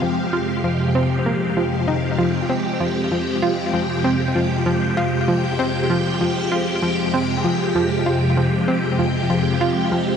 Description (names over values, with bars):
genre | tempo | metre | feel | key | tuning
ambient, sequencer-driven space music | 97 BPM | 4/4 | straight | F minor | A4 = 440 Hz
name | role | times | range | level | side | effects
phased string machine | sustained chords | 0.0-10.2 s | F2 to G5 | -20 LUFS | equal | ensemble chorus, phaser, shimmer reverb
analog pluck | riff | 0.0-10.1 s | F3 to F4 | -22 LUFS | equal | chorus, ping-pong delay, shimmer reverb
room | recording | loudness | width
wet plate reverb, RT60 2.5 s | none | -18 LUFS | side -7 dB against mid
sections
0.0-10.2 A section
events
none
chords
0.0 Fm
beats
0.33 0.95 1.57 | 2.19 2.81 3.42 4.04 | 4.66 5.28 5.90 6.52 | 7.14 7.75 8.37 8.99 | 9.61